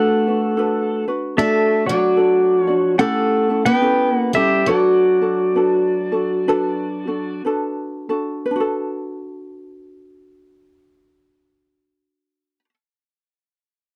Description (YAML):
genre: Hawaiian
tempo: 56-76 BPM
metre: 4/4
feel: swing 62% on 8ths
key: D major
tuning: A4 = 440 Hz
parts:
  - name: pedal steel guitar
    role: melody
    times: 0.0-7.4 s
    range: F#4 to G5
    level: -20 LUFS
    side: equal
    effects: none
  - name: picked acoustic archtop guitar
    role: second line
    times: 0.0-7.4 s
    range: F#3 to B3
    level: -24 LUFS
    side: equal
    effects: none
  - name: ukulele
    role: accompaniment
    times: 0.0-12.7 s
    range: C#4 to D5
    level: -25 LUFS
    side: equal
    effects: none
room: light reverb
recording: dry, close 1970s-style studio recording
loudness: -18 LUFS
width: mono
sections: 0.0-8.5 A section; 8.5-12.7 B section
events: slowing down 1.4-8.5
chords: 0.0 Asus4; 1.4 D; 3.0 A7; 4.7 D6